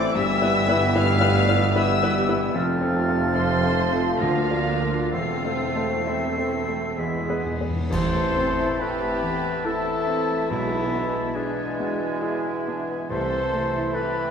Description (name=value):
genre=classical, romantic movement for piano and orchestra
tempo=63-77 BPM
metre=3/4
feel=rubato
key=A minor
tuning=A4 = 440 Hz
part: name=muted chamber violin section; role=melody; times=0.0-14.3 s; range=E5 to F6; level=-32 LUFS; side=left 4 dB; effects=none
part: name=warm grand piano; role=melody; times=0.0-14.3 s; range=A1 to C5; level=-28 LUFS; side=left 3 dB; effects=none
part: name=concert flute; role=second line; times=0.0-14.3 s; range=D5 to C7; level=-32 LUFS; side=left 1 dB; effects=none
part: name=muted symphonic violin section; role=second line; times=0.0-14.3 s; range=B3 to F5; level=-32 LUFS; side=left 4 dB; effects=none
part: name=warm clarinet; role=second line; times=0.0-14.3 s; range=B3 to C5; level=-30 LUFS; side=left 1 dB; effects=none
part: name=warm oboe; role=second line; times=0.0-14.3 s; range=D5 to A5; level=-34 LUFS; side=equal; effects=none
part: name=muted chamber viola section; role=accompaniment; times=0.0-14.3 s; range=E3 to A4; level=-33 LUFS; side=right 2 dB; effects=none
part: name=warm bassoon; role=accompaniment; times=0.0-14.3 s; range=E3 to A3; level=-33 LUFS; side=right 2 dB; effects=none
part: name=bright trombone section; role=sustained chords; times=0.0-14.3 s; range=A2 to A3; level=-32 LUFS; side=right 5 dB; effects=none
part: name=dark French horn section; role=sustained chords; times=0.0-14.3 s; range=G3 to G4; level=-33 LUFS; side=left 3 dB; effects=none
part: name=mellow tuba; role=bass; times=0.0-13.8 s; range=E1 to D2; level=-31 LUFS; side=right 4 dB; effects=none
part: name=muted chamber cello section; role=bass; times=0.0-13.8 s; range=D2 to C3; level=-32 LUFS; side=right 3 dB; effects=none
part: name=muted studio double bass section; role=bass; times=0.0-13.8 s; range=E1 to D2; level=-32 LUFS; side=right 3 dB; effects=none
part: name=cymbal swell, clash cymbals and concert bass drum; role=percussion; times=5.1-9.6 s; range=none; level=-35 LUFS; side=right 1 dB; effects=none
part: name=timpani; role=percussion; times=7.0-9.2 s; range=E2 to A2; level=-31 LUFS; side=equal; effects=none
room=moderate concert hall reverb, RT60 2.1 s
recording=minimal, uncompressed stereo recording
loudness=-21 LUFS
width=side -7 dB against mid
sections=0.0-7.9 A section; 7.9-14.3 B section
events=timpani fill 7.0-7.9; band accent 7.9-8.8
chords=0.2 Em/G; 2.6 F; 4.2 Bb/D; 5.1 Am/E; 7.0 E; 7.9 Am; 10.5 E7/B; 13.1 Am/C